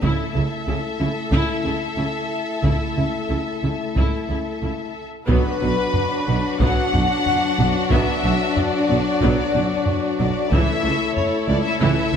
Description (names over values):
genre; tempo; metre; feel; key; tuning
cinematic, epic orchestral film score; 92 BPM; 4/4; straight; B minor; A4 = 440 Hz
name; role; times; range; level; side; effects
warm symphonic violin section; melody; 0.0-12.2 s; B4 to F#5; -25 LUFS; left 3 dB; none
warm symphonic violin section; second line; 0.0-12.2 s; D4 to A4; -28 LUFS; left 2 dB; none
warm symphonic viola section; accompaniment; 0.0-12.2 s; E3 to E4; -29 LUFS; right 1 dB; none
mellow French horn section; sustained chords; 0.0-12.2 s; F#3 to E4; -27 LUFS; left 5 dB; none
rich studio double bass section; bass; 0.0-12.2 s; B1 to C#2; -26 LUFS; right 3 dB; none
warm symphonic cello section; bass; 0.0-12.2 s; C#2 to C#3; -26 LUFS; right 2 dB; none
taiko ensemble; drums; 0.0-12.2 s; none; -25 LUFS; equal; none
clear woodwind section; sustained chords; 5.3-12.2 s; D4 to F#5; -29 LUFS; left 1 dB; none
mellow tuba; bass; 5.3-12.2 s; B1 to C#2; -28 LUFS; right 4 dB; none
room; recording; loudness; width
moderate scoring stage reverb, RT60 2.0 s; none; -18 LUFS; side -8 dB against mid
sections
0.0-5.3 A section; 5.3-12.2 B section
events
none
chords
0.0 A/C#; 5.3 Bm; 10.5 A/C#